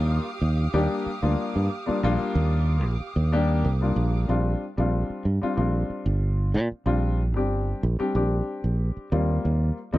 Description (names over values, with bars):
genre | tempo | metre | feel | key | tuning
jazz | 93 BPM | 4/4 | straight | unclear | A4 = 440 Hz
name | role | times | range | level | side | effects
warm baby grand piano | accompaniment | 0.0-10.0 s | G3 to G4 | -27 LUFS | left 2 dB | none
dark studio string section | sustained chords | 0.0-4.2 s | G4 to Eb6 | -36 LUFS | right 2 dB | none
fingered electric bass | bass | 0.0-10.0 s | G1 to Bb2 | -23 LUFS | right 1 dB | none
room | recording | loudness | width
small room ambience | dry, close 1970s-style studio recording | -22 LUFS | side -16 dB against mid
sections
0.0-4.3 A section; 4.3-10.0 B section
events
none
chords
0.0 Ebmaj9; 4.3 Bb69; 9.1 Eb6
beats
0.41 1.06 | 1.70 2.35 2.99 3.64 | 4.28 4.93 5.57 6.22 | 6.87 7.51 8.16 8.81 | 9.45